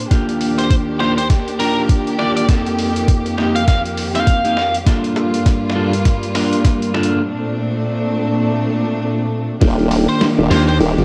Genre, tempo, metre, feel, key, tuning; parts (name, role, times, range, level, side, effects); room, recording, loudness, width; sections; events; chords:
glitch hop; 101 BPM; 4/4; swing 60% on 16ths; A4 = 440 Hz
warm studio string section; sustained chords; 0.0-11.0 s; Eb2 to G4; -22 LUFS; equal; sidechain pumping, cassette tape
clean electric guitar; stabs; 0.1-10.7 s; Bb3 to Bb4; -22 LUFS; equal; sidechain pumping, cassette tape, tape echo
boom bap sampler-style drum kit; drums; 0.1-11.0 s; hi-hat, snare drum; -28 LUFS; equal; overdrive, high-pass filter on hats, cassette tape, high-pass filter on snare
electronic kick drum; drums; 0.1-9.8 s; -16 LUFS; equal; cassette tape
biting lead guitar; melody; 0.6-4.7, 10.1-10.8 s; Bb4 to F5; -23 LUFS; equal; overdrive, cassette tape, tape echo
formant-sweep wobble bass; bass; 9.6-11.0 s; Eb1 to G1; -17 LUFS; equal; chorus, tube saturation
slap bass; bass; 10.5-10.8 s; Eb2; -18 LUFS; equal
light reverb, digital ambience; home recording on cassette; -17 LUFS; mono
0.0-9.6 A section; 9.6-11.0 B section
build-up 0.0-9.6; drum fill 0.1-7.2; break 7.2-9.6; drop 9.6-11.0
0.1 Ebmaj7; 2.5 F9sus4; 4.9 Gm7; 7.2 Bbmaj9; 9.6 Ebmaj7